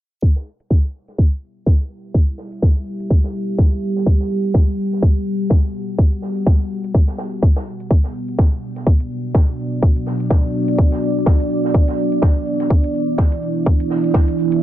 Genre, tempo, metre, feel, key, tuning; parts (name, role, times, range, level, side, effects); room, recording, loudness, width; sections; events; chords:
bass house; 125 BPM; 4/4; swing 57% on 16ths; E minor; A4 = 440 Hz
deep dark ambient pad; sustained chords; 2.4-14.6 s; B3 to F#5; -21 LUFS; right 1 dB; chorus, built-in reverb, sidechain pumping
electronic hi-hat; drums; 0.2-14.6 s; -54 LUFS; right 1 dB
electronic kick drum; drums; 0.2-14.3 s; -13 LUFS; equal
open jazz drum kit; drums; 0.2-14.5 s; hi-hat, shaker, snare drum; -34 LUFS; right 1 dB; sidechain pumping on hats, high-pass filter on hats, high-pass filter on snare, sidechain pumping on perc, high-pass filter on perc, high-pass filter on room
small room ambience; low-pass filter; -15 LUFS; side -13 dB against mid
0.2-14.6 A section
filter sweep on ambient pad 0.2-14.6; filter sweep 0.2-14.6
0.2 Em; 7.9 Bm